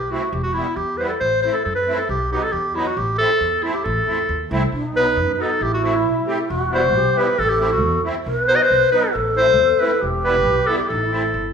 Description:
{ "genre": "klezmer", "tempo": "136 BPM", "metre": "2/4", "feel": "straight", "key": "A dorian sharp4", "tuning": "A4 = 440 Hz", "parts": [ { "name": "clear clarinet", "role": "melody", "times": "0.0-11.5 s", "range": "E4 to D#5", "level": "-18 LUFS", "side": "left 1 dB", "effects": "none" }, { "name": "upright bass", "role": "bass", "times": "0.0-11.5 s", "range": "E1 to F#2", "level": "-26 LUFS", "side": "equal", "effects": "none" }, { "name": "musette accordion", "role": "accompaniment", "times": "0.1-11.2 s", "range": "F#3 to G4", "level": "-27 LUFS", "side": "right 1 dB", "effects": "none" }, { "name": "mellow long shakuhachi", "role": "second line", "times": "4.7-11.5 s", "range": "D#4 to B4", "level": "-21 LUFS", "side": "right 1 dB", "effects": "none" } ], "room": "wet large studio reverb, RT60 1.1 s", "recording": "band playing live in one room", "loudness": "-16 LUFS", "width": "side -6 dB against mid", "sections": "0.0-4.7 A section; 4.7-11.5 B section", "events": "none", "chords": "0.3 Em; 1.2 Am; 2.1 B; 3.0 Am; 4.7 B; 5.6 Am; 6.5 Em; 7.4 Am; 8.3 B; 9.1 Am; 10.0 Em; 10.9 Am" }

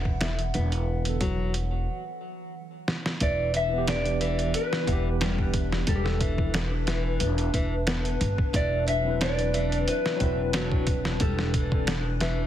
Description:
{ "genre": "trip hop", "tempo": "90 BPM", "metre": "4/4", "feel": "swing 54% on 16ths", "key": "unclear", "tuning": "A4 = 440 Hz", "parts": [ { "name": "warbly tape-like pad", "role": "sustained chords", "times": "0.0-12.5 s", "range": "E3 to F#5", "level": "-35 LUFS", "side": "equal", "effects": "chorus, built-in reverb" }, { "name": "upright bass", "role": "bass", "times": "0.0-12.5 s", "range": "E1 to G1", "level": "-28 LUFS", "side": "equal", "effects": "none" }, { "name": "trip hop sampler-style drum kit", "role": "drums", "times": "0.1-12.4 s", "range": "hi-hat, kick drum, snare drum", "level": "-28 LUFS", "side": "equal", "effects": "none" }, { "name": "nylon-string guitar", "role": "arpeggios", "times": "0.2-12.5 s", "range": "E3 to E4", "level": "-34 LUFS", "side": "left 3 dB", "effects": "tape echo" }, { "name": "tine electric piano", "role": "accompaniment", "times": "1.0-11.9 s", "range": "D3 to B4", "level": "-34 LUFS", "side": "equal", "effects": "medium stereo tremolo, vintage 12-bit sampler grit, tape echo" }, { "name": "mellow electric guitar", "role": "melody", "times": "3.2-11.8 s", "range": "G4 to E5", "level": "-30 LUFS", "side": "left 1 dB", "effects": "tape echo" } ], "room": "digital ambience", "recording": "heavily compressed radio sound, multiband compression", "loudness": "-24 LUFS", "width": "side -11 dB against mid", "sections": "0.0-3.2 A section; 3.2-12.5 B section", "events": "break 1.9-3.2; drum fill 2.9-3.2", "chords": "0.0 N.C.; 0.5 B5/E; 3.2 G6/E; 5.9 N.C.; 8.5 D13/E; 11.2 Am7/E" }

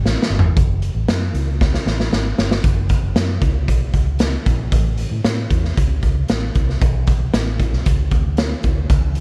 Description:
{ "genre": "uptempo 1960s-style soul", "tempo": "115 BPM", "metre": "4/4", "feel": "straight", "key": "F# minor", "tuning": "A4 = 440 Hz", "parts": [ { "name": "vintage muted fingered electric bass", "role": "bass", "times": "0.0-9.2 s", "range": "F#1 to A2", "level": "-23 LUFS", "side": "equal", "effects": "none" }, { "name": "raw garage drum kit", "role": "drums", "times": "0.1-9.2 s", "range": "hi-hat, kick drum, snare drum, toms", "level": "-20 LUFS", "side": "equal", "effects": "none" } ], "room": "little or no reverb", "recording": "dark, warm production", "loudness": "-18 LUFS", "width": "mono", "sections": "0.6-2.6 A section; 2.6-9.2 B section", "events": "drum fill 0.0-0.6, 1.6-2.6", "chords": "none" }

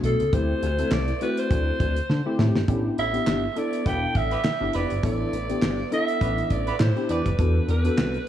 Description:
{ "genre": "early-eighties boogie funk", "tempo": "102 BPM", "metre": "4/4", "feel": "swing 56% on 16ths", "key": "A minor", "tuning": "A4 = 440 Hz", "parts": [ { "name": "growling alto saxophone", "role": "melody", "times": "0.0-8.3 s", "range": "A4 to G5", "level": "-28 LUFS", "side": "right 1 dB", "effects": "none" }, { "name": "tine electric piano", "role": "accompaniment", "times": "0.0-8.2 s", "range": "A3 to A4", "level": "-28 LUFS", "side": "left 2 dB", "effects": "overdrive, analog chorus" }, { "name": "chorused synth bass", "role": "bass", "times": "0.0-8.2 s", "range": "E1 to D3", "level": "-25 LUFS", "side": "equal", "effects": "none" }, { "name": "damped 70s drum kit", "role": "drums", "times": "0.0-8.3 s", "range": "handclaps, hi-hat, kick drum, snare drum", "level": "-27 LUFS", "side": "equal", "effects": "none" }, { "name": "warm horn section", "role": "second line", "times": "3.9-7.3 s", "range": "B3 to D5", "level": "-35 LUFS", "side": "right 3 dB", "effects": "tape echo" } ], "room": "light reverb, small room reverb", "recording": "small room ambience", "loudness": "-21 LUFS", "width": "side -11 dB against mid", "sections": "0.0-8.3 A section", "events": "drum fill 2.1-2.7", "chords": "0.3 D9sus4; 2.7 A9sus4; 7.4 E9sus4" }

